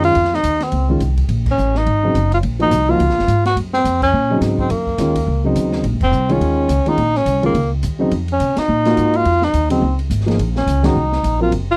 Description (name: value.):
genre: modal jazz.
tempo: 211 BPM.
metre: 4/4.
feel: swing 59% on 8ths.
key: Bb minor.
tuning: A4 = 436 Hz.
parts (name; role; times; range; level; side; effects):
breathy tenor saxophone; melody; 0.0-11.8 s; Bb3 to Gb4; -20 LUFS; equal; none.
dark grand piano; accompaniment; 0.0-11.5 s; Db3 to Bb4; -21 LUFS; equal; none.
upright bass; bass; 0.0-11.8 s; F1 to C3; -21 LUFS; equal; none.
open jazz drum kit; drums; 0.0-11.6 s; crash cymbal, hi-hat, kick drum, ride cymbal, snare drum; -32 LUFS; equal; none.
room: little or no reverb.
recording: dry, close 1970s-style studio recording.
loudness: -17 LUFS.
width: mono.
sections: 0.0-11.8 A section.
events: band accent 1.4, 4.0, 6.0, 8.5, 10.8.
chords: 0.0 Bbm11 (rootless); 1.3 Ebm11; 5.8 Bbm11; 10.4 Ebm7.